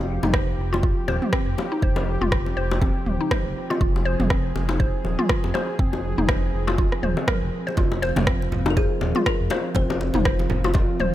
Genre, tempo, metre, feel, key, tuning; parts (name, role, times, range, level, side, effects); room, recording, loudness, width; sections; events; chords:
afro house; 121 BPM; 4/4; swing 57% on 16ths; F minor; A4 = 440 Hz
warm analog pad; sustained chords; 0.0-11.1 s; F3 to Ab4; -31 LUFS; right 1 dB; chorus, sidechain pumping
smooth synth bass; bass; 0.0-11.1 s; Eb1 to F1; -26 LUFS; equal; sidechain pumping
mallet-like synth pluck; arpeggios; 0.2-11.1 s; C4 to C5; -28 LUFS; left 1 dB; chorus, vintage 12-bit sampler grit, sidechain pumping, dub echo
deep house drum kit; drums; 0.2-11.1 s; rim click, toms; -27 LUFS; right 1 dB; overdrive
bongos; percussion; 0.2-10.9 s; -30 LUFS; left 3 dB
electronic kick drum; drums; 0.3-10.9 s; -24 LUFS; equal
congas; percussion; 7.8-11.1 s; -31 LUFS; right 2 dB
kalimba; melody; 8.7-10.2 s; Ab4 to C5; -30 LUFS; left 4 dB; dub echo
small room reverb; -20 LUFS; side -13 dB against mid
0.0-11.1 A section
0.0 Fm9